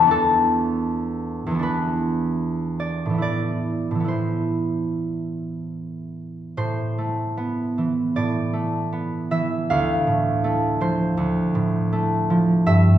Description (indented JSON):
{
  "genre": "classical, solo harp piece",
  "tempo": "70-82 BPM",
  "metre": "4/4",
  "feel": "rubato",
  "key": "A minor",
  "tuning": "A4 = 440 Hz",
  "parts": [
    { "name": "concert harp", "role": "solo", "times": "0.0-13.0 s", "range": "D2 to A5", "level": "-20 LUFS", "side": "equal", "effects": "none" }
  ],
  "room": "wet recital hall reverb, RT60 1.4 s",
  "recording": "heard from further back in the room",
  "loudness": "-20 LUFS",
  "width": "side -11 dB against mid",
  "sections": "0.0-6.6 A section; 6.6-13.0 A section",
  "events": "none",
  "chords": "0.1 E7sus4; 3.2 Amadd9; 9.7 Dm9"
}